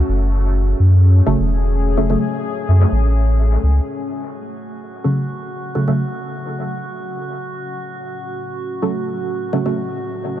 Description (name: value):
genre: dub techno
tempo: 127 BPM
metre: 4/4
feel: swing 53% on 16ths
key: F# minor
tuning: A4 = 440 Hz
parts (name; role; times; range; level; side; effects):
- deep dark ambient pad; sustained chords; 0.0-10.4 s; A3 to G#4; -27 LUFS; left 3 dB; chorus, built-in reverb
- pure sine sub bass; bass; 0.1-3.8 s; E1 to F#2; -13 LUFS; equal; none
- filtered dub chord stab; stabs; 1.3-9.8 s; C#3 to A3; -23 LUFS; right 1 dB; chorus, phaser, dub echo
- drifting glass-harmonics texture; texture; 4.5-10.4 s; F#4; -28 LUFS; right 3 dB; chorus, built-in reverb
room: light reverb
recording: none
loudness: -16 LUFS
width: side -12 dB against mid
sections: 0.0-3.9 A section; 3.9-10.4 B section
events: filter sweep on ambient pad 3.9-10.4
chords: 0.0 F#m